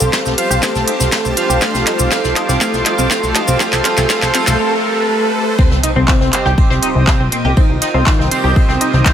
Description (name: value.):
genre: melodic techno.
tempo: 121 BPM.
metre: 4/4.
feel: straight.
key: C dorian.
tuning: A4 = 440 Hz.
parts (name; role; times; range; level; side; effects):
sweeping resonant pad; sustained chords; 0.0-9.1 s; A4 to Eb6; -24 LUFS; equal; chorus, sidechain pumping.
tight sequenced synth; arpeggios; 0.0-9.1 s; C4 to G4; -22 LUFS; equal; chorus, phaser, vintage 12-bit sampler grit, sidechain pumping, dub echo.
plucky analog bass; bass; 0.0-9.0 s; C2; -17 LUFS; equal; sidechain pumping.
cabasa; percussion; 0.0-4.6 s; none; -23 LUFS; left 2 dB; none.
riser and sub drop; sound effects; 0.5-7.6 s; none; -24 LUFS; right 1 dB; none.
granular cloud pad; texture; 0.0-9.1 s; F4 to A5; -25 LUFS; right 1 dB; built-in reverb, sidechain pumping.
mellow synth brass; melody; 0.1-9.1 s; Bb2 to A4; -20 LUFS; equal; chorus, dub echo.
electronic kick drum; drums; 0.1-9.1 s; none; -13 LUFS; equal; high-pass filter on kick.
jazz brush drum kit; drums; 0.1-9.1 s; hi-hat, ride cymbal, snare drum; -27 LUFS; equal; sidechain pumping on cymbals, high-pass filter on cymbals, sidechain pumping on hats, high-pass filter on hats, high-pass filter on snare, high-pass filter on room.
techno drum kit; drums; 0.1-9.1 s; handclaps, hi-hat, snare drum; -19 LUFS; equal; high-pass filter on hats, high-pass filter on snare, high-pass filter on room.
sync-sweep polysynth; stabs; 0.4-9.1 s; C4 to F5; -20 LUFS; right 2 dB; chorus, sidechain pumping, dub echo.
room: moderate huge ambient reverb, RT60 4.5 s.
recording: none.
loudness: -12 LUFS.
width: side -9 dB against mid.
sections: 0.0-5.6 A section; 5.6-9.1 B section.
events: build-up 0.0-5.6; drum fill 0.0-4.6; filter sweep on synth arpeggio sound 0.0-5.6; filter sweep on analog polysynth 0.0-5.6; filter sweep on analog synth pad 0.0-5.6; riser 0.5-5.6; drop 5.6-9.1; impact 5.6-7.6.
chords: 0.0 F/C; 5.6 Cm.